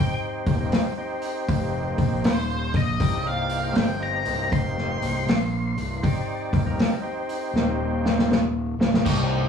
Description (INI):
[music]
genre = blues rock power trio and southern rock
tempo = 79 BPM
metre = 4/4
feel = swing 66% on 8ths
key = C minor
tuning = A4 = 440 Hz
[part]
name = octave-fuzz lead guitar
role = melody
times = 0.0-6.8 s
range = C5 to C6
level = -29 LUFS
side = left 2 dB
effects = wah, distortion
[part]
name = overdriven tonewheel organ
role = sustained chords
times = 0.0-9.5 s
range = C4 to D5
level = -30 LUFS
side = right 1 dB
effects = chorus vibrato
[part]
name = fuzz fingered electric bass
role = bass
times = 0.5-9.5 s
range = C1 to Bb1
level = -27 LUFS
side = left 1 dB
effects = overdrive
[part]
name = vintage drum kit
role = drums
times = 0.5-9.3 s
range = crash cymbal, hi-hat, kick drum, snare drum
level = -24 LUFS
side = equal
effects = none
[part]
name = biting overdriven guitar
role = riff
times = 9.0-9.5 s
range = C2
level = -23 LUFS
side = equal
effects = phaser
[sound]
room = moderate small room reverb, RT60 0.5 s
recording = rough rehearsal-room recording, studio ambience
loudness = -21 LUFS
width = side -7 dB against mid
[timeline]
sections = 0.0-9.1 A section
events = lead electric guitar solo 0.0-9.1; drum fill 7.5-9.1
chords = 0.0 Cm